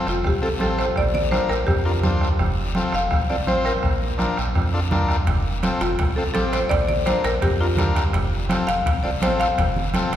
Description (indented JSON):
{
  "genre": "latin, cumbia",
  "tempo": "167 BPM",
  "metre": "4/4",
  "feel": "straight",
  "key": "F major",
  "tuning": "A4 = 444 Hz",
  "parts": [
    { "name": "combo organ", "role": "accompaniment", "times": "0.0-10.1 s", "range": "C4 to C5", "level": "-27 LUFS", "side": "left 2 dB", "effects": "none" },
    { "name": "marimba with hard mallets", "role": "melody", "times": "0.1-10.1 s", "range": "F4 to F5", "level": "-24 LUFS", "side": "left 1 dB", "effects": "none" },
    { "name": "round analog bass", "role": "bass", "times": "0.1-10.2 s", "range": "F1 to F2", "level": "-24 LUFS", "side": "right 1 dB", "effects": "none" },
    { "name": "bombo", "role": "percussion", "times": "0.1-10.2 s", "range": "none", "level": "-25 LUFS", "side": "equal", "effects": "none" },
    { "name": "guiro", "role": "percussion", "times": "0.1-10.1 s", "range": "none", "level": "-35 LUFS", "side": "left 4 dB", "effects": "none" },
    { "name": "congas", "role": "percussion", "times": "0.3-10.1 s", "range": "none", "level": "-29 LUFS", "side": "equal", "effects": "none" },
    { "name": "timbales", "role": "percussion", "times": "5.3-10.2 s", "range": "none", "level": "-35 LUFS", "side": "right 5 dB", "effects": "none" }
  ],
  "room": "wet church reverb, RT60 3.1 s",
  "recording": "recorded in a church or concert hall",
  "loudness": "-19 LUFS",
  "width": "side -11 dB against mid",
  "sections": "0.0-10.2 A section",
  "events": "none",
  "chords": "0.0 F; 1.0 Bb; 2.4 F; 3.8 Bb; 5.3 F; 6.7 Bb; 8.1 F"
}